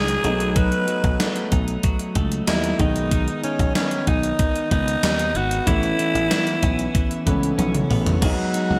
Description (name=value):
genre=1980s-style pop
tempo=94 BPM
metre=4/4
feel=straight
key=B mixolydian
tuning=A4 = 440 Hz
part: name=growling alto saxophone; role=melody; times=0.0-8.8 s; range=C#4 to B4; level=-27 LUFS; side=equal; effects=shimmer reverb
part: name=warm concert grand piano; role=accompaniment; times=0.0-8.8 s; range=D#3 to D#5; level=-30 LUFS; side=equal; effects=shimmer reverb
part: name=twelve-string electric guitar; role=riff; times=0.0-8.8 s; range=D#3 to G#4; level=-30 LUFS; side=equal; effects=lush chorus, digital delay, shimmer reverb
part: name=dry thumbed slap bass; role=bass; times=0.0-8.8 s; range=G#1 to D#2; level=-27 LUFS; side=equal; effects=none
part: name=gated 80s digital drum machine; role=drums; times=0.1-8.7 s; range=crash cymbal, hi-hat, kick drum, snare drum, toms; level=-24 LUFS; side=equal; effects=gated reverb, gated reverb snare, overdrive
room=moderate lush hall reverb, RT60 2.2 s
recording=big arena sound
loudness=-21 LUFS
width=mono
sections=0.0-8.2 A section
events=drum fill 7.6-8.2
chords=0.2 B7; 2.8 G#m/B; 5.7 Aadd9; 8.2 B6